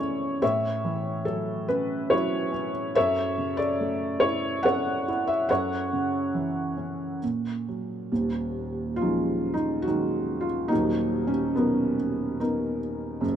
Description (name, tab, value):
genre	classical, lyrical solo piano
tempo	71 BPM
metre	3/4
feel	rubato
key	F# minor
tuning	A4 = 439 Hz
part	felt-muted upright piano	solo	0.0-13.4 s	D#1 to F#5	-24 LUFS	equal	none
room	moderate plate reverb, RT60 3.8 s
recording	none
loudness	-24 LUFS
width	side -9 dB against mid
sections	0.0-8.1 A section; 8.1-13.4 B section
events	none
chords	0.4 A6; 3.0 F#m7; 7.2 F#/A#; 8.1 D#m11; 10.7 Bmaj7/D#